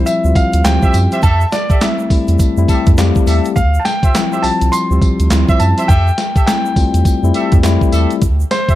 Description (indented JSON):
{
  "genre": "R&B, new jack swing",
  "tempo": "103 BPM",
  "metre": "4/4",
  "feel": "swing 61% on 16ths",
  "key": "D minor",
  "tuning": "A4 = 443 Hz",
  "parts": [
    { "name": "warm concert grand piano", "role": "melody", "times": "0.0-8.8 s", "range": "C5 to C6", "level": "-19 LUFS", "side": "equal", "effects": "ping-pong delay" },
    { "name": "mellow tine electric piano", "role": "accompaniment", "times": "0.0-8.2 s", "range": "F3 to A5", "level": "-18 LUFS", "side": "moving between left 9 dB and equal", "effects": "auto-pan" },
    { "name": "round analog bass", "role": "bass", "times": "0.0-8.7 s", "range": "C2 to F#2", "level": "-14 LUFS", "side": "right 1 dB", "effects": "none" },
    { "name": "crisp 8-bit digital drum machine", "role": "drums", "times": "0.1-8.8 s", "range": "handclaps, hi-hat, kick drum, snare drum, tambourine", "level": "-14 LUFS", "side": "right 1 dB", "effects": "vintage 12-bit sampler grit" },
    { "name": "egg shaker", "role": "percussion", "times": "0.1-8.8 s", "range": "none", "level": "-34 LUFS", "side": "right 9 dB", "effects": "none" },
    { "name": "warm horn section", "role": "stabs", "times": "0.8-8.8 s", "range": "F4 to E5", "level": "-23 LUFS", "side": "right 2 dB", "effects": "none" }
  ],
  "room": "little or no reverb",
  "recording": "dark, warm production",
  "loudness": "-11 LUFS",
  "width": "side -14 dB against mid",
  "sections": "0.0-8.8 A section",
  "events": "tine electric piano fill 2.4-3.6",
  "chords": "0.0 Dm11; 1.2 Fmaj9; 3.6 Dm11; 5.9 Fmaj9; 8.2 Dm7",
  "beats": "0.07 0.65 | 1.23 1.81 2.40 2.98 | 3.56 4.14 4.73 5.31 | 5.89 6.47 7.06 7.64 | 8.22"
}